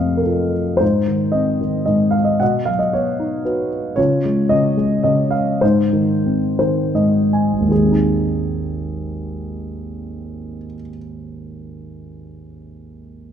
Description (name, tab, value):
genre	classical, lyrical solo piano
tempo	75-117 BPM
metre	3/4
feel	rubato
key	Ab major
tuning	A4 = 440 Hz
part	dark concert grand piano	solo	0.0-13.3 s	Ab1 to Ab5	-17 LUFS	equal	none
room	moderate scoring stage reverb, RT60 1.9 s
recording	dark, warm production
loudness	-15 LUFS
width	side -8 dB against mid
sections	0.0-7.7 A section; 7.7-12.4 B section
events	slowing down 4.0-7.7; grand piano fill 6.2-7.7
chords	0.0 F; 0.8 Ab; 2.4 B; 4.0 Db; 5.6 Ab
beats	0.27 | 0.81 1.35 1.89 | 2.41 2.94 3.46 | 3.97 4.50 5.04 | 5.62 6.25 6.94 | 7.71 8.51 9.30 | 10.08 10.85 11.63